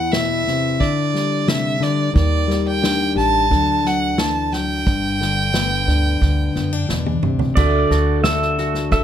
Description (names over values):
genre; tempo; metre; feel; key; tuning
acoustic folk duo or small band; 89 BPM; 4/4; straight; G major; A4 = 440 Hz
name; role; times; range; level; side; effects
clear fiddle; melody; 0.0-6.9 s; D5 to A5; -21 LUFS; right 3 dB; none
fingerpicked plugged-in steel-string acoustic guitar; accompaniment; 0.0-9.0 s; E2 to A4; -21 LUFS; left 4 dB; none
unplugged drum kit; drums; 0.1-9.0 s; crash cymbal, kick drum, snare drum, toms; -22 LUFS; equal; none
upright bass; bass; 2.2-9.0 s; G1 to F#2; -22 LUFS; right 1 dB; none
pedal steel guitar; second line; 7.6-9.0 s; D5 to E5; -20 LUFS; right 3 dB; none
mandolin; arpeggios; 7.6-9.0 s; A3 to A4; -24 LUFS; right 5 dB; none
room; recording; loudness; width
light reverb; none; -16 LUFS; side -10 dB against mid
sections
0.0-7.6 A section; 7.6-9.0 B section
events
drum fill 6.9-7.6; pedal steel guitar solo 7.6-9.0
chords
0.0 E5; 0.8 G5/D; 2.1 Ebmaj7#11; 3.5 D; 4.9 G; 7.6 Dadd9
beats
0.12 0.79 1.47 | 2.15 2.83 3.50 4.18 | 4.86 5.53 6.21 6.89 | 7.57 8.24 8.92